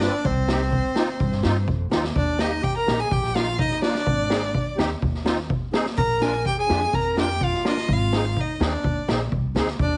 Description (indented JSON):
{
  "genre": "klezmer",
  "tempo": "126 BPM",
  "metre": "4/4",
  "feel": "straight",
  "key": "Eb major",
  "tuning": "A4 = 440 Hz",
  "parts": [
    { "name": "rich violin", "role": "melody", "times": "0.0-10.0 s", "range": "C5 to Bb5", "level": "-29 LUFS", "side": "equal", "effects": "plate reverb" },
    { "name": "clear clarinet", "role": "second line", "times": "0.0-10.0 s", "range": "C4 to Bb4", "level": "-30 LUFS", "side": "equal", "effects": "none" },
    { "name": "musette accordion", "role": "accompaniment", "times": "0.0-9.7 s", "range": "Bb3 to B4", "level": "-29 LUFS", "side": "equal", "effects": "none" },
    { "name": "upright bass", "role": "bass", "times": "0.0-10.0 s", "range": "Ab1 to G2", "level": "-29 LUFS", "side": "equal", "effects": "none" },
    { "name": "street-band drum kit", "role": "drums", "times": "0.0-9.9 s", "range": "kick drum, snare drum", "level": "-28 LUFS", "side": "equal", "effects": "none" }
  ],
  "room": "light reverb",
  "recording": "heavily compressed radio sound, multiband compression, nothing above 10.5 kHz",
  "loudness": "-23 LUFS",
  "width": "mono",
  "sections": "0.0-2.2 A section; 2.2-10.0 B section",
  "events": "none",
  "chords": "0.3 Cm; 2.2 Eb; 4.1 Ab; 6.0 Bb; 7.9 Ab"
}